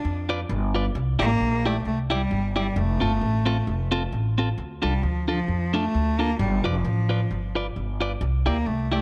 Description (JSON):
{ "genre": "ska", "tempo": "132 BPM", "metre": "4/4", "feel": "swing 56% on 8ths", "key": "D minor", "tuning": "A4 = 440 Hz", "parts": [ { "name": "rich cello", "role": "melody", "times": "0.0-9.0 s", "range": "F3 to D4", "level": "-29 LUFS", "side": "equal", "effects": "none" }, { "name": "upright bass", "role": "bass", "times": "0.0-9.0 s", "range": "F1 to F2", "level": "-27 LUFS", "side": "equal", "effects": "none" }, { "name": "clean electric guitar", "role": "accompaniment", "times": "0.3-9.0 s", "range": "C4 to D5", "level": "-31 LUFS", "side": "equal", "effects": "none" } ], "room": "light reverb, small room reverb", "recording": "none", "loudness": "-24 LUFS", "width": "mono", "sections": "0.0-4.6 A section; 4.6-9.0 A section", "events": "none", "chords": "0.0 G7; 0.9 Cadd9; 2.8 F; 4.6 Dm; 6.4 G7; 8.2 Cadd9", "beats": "0.04 0.49 | 0.94 1.40 1.85 2.30 | 2.75 3.21 3.66 4.12 | 4.57 5.02 5.48 5.93 | 6.39 6.84 7.29 7.75 | 8.21 8.66" }